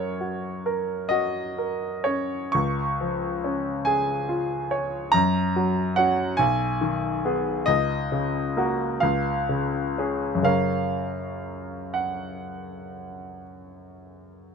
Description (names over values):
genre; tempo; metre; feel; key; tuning
classical, romantic nocturne for solo piano; 40-49 BPM (dotted quarters); 9/8; rubato; F# major; A4 = 440 Hz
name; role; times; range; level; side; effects
clear grand piano; solo; 0.0-14.5 s; B1 to C#6; -23 LUFS; equal; none
room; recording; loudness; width
light reverb; close, detailed microphones; -23 LUFS; side -6 dB against mid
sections
0.0-14.5 A section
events
none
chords
0.0 F#; 2.5 C#; 5.1 F#; 6.4 G#m/B; 7.7 F#/C#; 9.0 C#; 10.4 F#